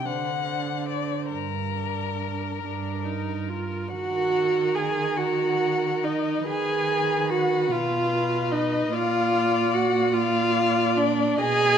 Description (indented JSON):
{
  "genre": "classical, slow romantic movement for string quartet",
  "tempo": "48 BPM (dotted quarters)",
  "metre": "6/8",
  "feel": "uneven beats, rubato",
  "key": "G minor, Eb minor from 3.9 s",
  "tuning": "A4 = 437 Hz",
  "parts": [
    { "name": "muted violin", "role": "melody", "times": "0.0-11.8 s", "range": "Bb4 to F#5", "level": "-31 LUFS", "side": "left 12 dB", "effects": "none" },
    { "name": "muted violin", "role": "second line", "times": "0.0-11.8 s", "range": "Bb4 to Ab5", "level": "-29 LUFS", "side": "left 5 dB", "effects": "none" },
    { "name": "muted viola", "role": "accompaniment", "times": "0.0-11.8 s", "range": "D4 to Ab4", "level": "-25 LUFS", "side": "right 2 dB", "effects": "none" },
    { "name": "muted cello", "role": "bass", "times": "0.1-11.8 s", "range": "G2 to Eb3", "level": "-29 LUFS", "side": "right 6 dB", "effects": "none" }
  ],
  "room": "moderate scoring stage reverb, RT60 1.4 s",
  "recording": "close, detailed microphones",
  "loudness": "-22 LUFS",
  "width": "side -8 dB against mid",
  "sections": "0.0-3.9 A section; 3.9-11.8 B section",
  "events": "none",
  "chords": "0.1 D7; 1.3 Gm; 3.9 Ebm; 6.5 Abm/Eb; 8.9 Bb"
}